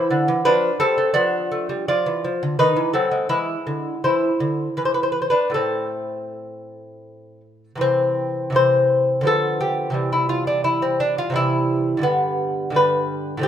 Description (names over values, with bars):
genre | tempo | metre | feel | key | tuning
classical, baroque-style dance for lute | 77-90 BPM | 3/4 | rubato | A minor, C major from 7.8 s | A4 = 440 Hz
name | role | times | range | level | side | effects
lute | solo | 0.0-13.5 s | G2 to D5 | -18 LUFS | equal | none
room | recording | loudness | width
moderate recital hall reverb, RT60 1.7 s | minimal, uncompressed stereo recording | -18 LUFS | side -9 dB against mid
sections
0.0-7.8 A section; 7.8-13.5 A section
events
none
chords
0.5 F; 1.1 Bdim/F; 2.6 D#dim7; 3.3 E; 4.0 Cadd9; 4.8 Cmaj9/E; 5.5 Am; 7.8 C; 9.3 G7/D; 9.9 C; 12.0 G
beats
0.46 | 1.15 1.89 2.59 | 3.29 4.04 4.77 | 5.54 6.30 7.06 | 7.81 8.56 9.27 | 9.95 10.64 11.34 | 12.03 12.76 13.44